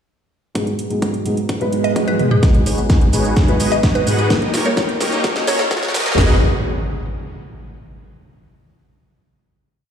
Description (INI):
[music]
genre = EDM, festival progressive house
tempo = 128 BPM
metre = 4/4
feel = straight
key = G# minor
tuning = A4 = 439 Hz
[part]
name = felt-muted upright piano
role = accompaniment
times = 0.5-6.4 s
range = G#2 to D#5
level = -21 LUFS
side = equal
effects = vintage 12-bit sampler grit, sidechain pumping, tape echo
[part]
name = house drum kit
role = drums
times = 0.6-6.3 s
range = hi-hat, kick drum, snare drum, toms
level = -16 LUFS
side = equal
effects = high-pass filter on kick, high-pass filter on snare, high-pass filter on toms, high-pass filter on hats, high-pass filter on room
[part]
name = house drum kit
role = drums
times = 0.6-6.2 s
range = hi-hat, shaker, snare drum, toms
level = -23 LUFS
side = equal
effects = high-pass filter on hats, high-pass filter on toms, high-pass filter on snare, high-pass filter on perc, high-pass filter on room
[part]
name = swell, riser and impact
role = sound effects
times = 1.6-8.1 s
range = none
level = -25 LUFS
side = equal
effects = none
[part]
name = mallet-like synth pluck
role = melody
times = 1.8-5.8 s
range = G#4 to D#5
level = -24 LUFS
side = equal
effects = chorus, phaser, tape echo
[part]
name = dense compressed supersaw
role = riff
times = 2.4-6.4 s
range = A#3 to G5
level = -22 LUFS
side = equal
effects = sidechain pumping, low-pass filter, tape echo
[part]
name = saturated sub bass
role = bass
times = 2.4-6.4 s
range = D#1 to G#2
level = -22 LUFS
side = equal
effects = sidechain pumping
[sound]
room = moderate lush hall reverb, RT60 2.2 s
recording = played on a big sound system in a bare room, large studio reverb, high-pass filter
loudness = -14 LUFS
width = side -8 dB against mid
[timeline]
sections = 0.6-2.4 intro; 2.4-6.2 build; 6.2-8.1 final chord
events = swell 1.6-2.4; drum fill 2.1-2.4, 2.4-6.2; build-up 2.4-6.2; filter sweep on supersaw synth 2.4-6.2; filter sweep 2.4-6.2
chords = 0.6 G#m7; 4.3 D#; 5.2 F#; 6.2 G#m7